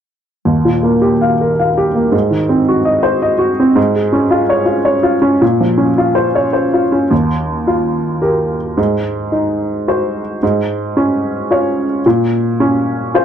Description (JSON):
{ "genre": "classical", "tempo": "109 BPM", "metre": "3/4", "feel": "rubato", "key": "unclear", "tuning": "A4 = 441 Hz", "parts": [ { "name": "clear upright piano", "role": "accompaniment", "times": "0.5-13.2 s", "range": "Eb2 to F5", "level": "-12 LUFS", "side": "equal", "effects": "none" } ], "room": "small room ambience", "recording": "dry, close 1970s-style studio recording", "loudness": "-12 LUFS", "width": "side -9 dB against mid", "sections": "0.5-7.1 A section; 7.1-13.2 B section", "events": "none", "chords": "0.5 Ebadd9; 2.1 Ab7; 3.8 Db/Ab; 5.4 Bbmadd9; 7.1 Ebadd9; 8.8 Ab7; 10.4 Db/Ab; 12.0 Bbm" }